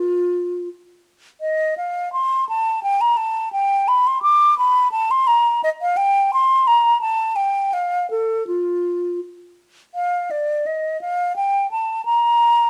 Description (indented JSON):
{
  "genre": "classical, baroque-style fantasia for unaccompanied flute",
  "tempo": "80-88 BPM",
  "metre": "3/4",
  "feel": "rubato",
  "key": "unclear",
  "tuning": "A4 = 444 Hz",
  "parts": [
    { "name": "mellow hollow silver concert flute", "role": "solo", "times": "0.0-12.7 s", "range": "F4 to D6", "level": "-19 LUFS", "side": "equal", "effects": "none" }
  ],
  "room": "light reverb",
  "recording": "none",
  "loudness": "-19 LUFS",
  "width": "mono",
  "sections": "0.0-10.0 A section; 10.0-12.7 B section",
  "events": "none",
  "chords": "none"
}